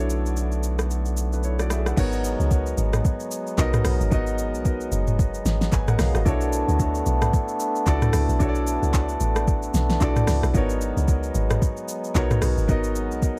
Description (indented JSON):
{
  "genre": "amapiano",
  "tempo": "112 BPM",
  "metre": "4/4",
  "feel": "swing 58% on 16ths",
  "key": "unclear",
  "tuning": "A4 = 440 Hz",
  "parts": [
    { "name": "warm baby grand piano", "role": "accompaniment", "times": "0.0-13.4 s", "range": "B3 to G#5", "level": "-31 LUFS", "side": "equal", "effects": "analog delay" },
    { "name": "mellow accordion", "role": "sustained chords", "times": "0.0-13.4 s", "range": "D3 to D4", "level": "-32 LUFS", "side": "equal", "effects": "sidechain pumping" },
    { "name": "saturated sub bass", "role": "bass", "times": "0.0-1.9 s", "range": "B1", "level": "-26 LUFS", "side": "equal", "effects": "none" },
    { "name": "smooth R&B drum kit", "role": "drums", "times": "0.1-13.4 s", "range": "crash cymbal, handclaps, hi-hat, kick drum, rim click, shaker, snare drum, toms", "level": "-26 LUFS", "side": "equal", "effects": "overdrive" },
    { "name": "deep log drum bass", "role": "bass", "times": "2.0-13.4 s", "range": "F#1 to D2", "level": "-26 LUFS", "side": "equal", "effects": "none" }
  ],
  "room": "light reverb",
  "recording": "echo-heavy mix",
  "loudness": "-23 LUFS",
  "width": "mono",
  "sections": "0.0-2.0 A section; 2.0-13.4 B section",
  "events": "drop 2.0-13.4",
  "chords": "0.0 Bm11; 2.0 G#m11; 6.3 Bm11; 10.5 G#m11"
}